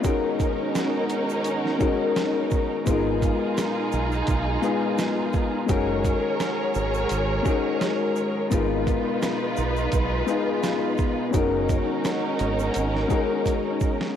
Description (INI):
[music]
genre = hip hop, boom-bap hip-hop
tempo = 85 BPM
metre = 4/4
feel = swing 55% on 16ths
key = unclear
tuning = A4 = 439 Hz
[part]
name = warm concert grand piano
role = accompaniment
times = 0.0-14.2 s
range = G#3 to A#4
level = -26 LUFS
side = left 6 dB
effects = cassette tape, high-pass filter, low-pass filter
[part]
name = dark analog pad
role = sustained chords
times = 0.0-14.1 s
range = B2 to A#4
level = -33 LUFS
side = right 2 dB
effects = chorus, high-pass filter, low-pass filter, cassette tape
[part]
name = warm studio string section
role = stabs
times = 0.0-14.1 s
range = C#4 to C#5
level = -27 LUFS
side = right 2 dB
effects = high-pass filter, low-pass filter, cassette tape, tape echo
[part]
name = boom bap sampler-style drum kit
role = drums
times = 0.0-14.2 s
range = hi-hat, kick drum, rim click, shaker, snare drum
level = -27 LUFS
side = right 2 dB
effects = cassette tape
[part]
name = egg shaker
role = percussion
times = 0.0-14.0 s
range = none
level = -44 LUFS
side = right 15 dB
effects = none
[part]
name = deep dub fingered electric bass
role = bass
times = 2.9-13.0 s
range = F#1 to B1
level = -28 LUFS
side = right 2 dB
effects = none
[sound]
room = light reverb, small room ambience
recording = home recording on cassette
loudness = -22 LUFS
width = side -9 dB against mid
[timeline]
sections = 0.0-14.2 A section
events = break 0.0-2.9; drum fill 13.5-14.2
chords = 0.0 F#69; 2.9 G#m69; 5.7 F#69; 8.5 G#m69; 11.3 F#69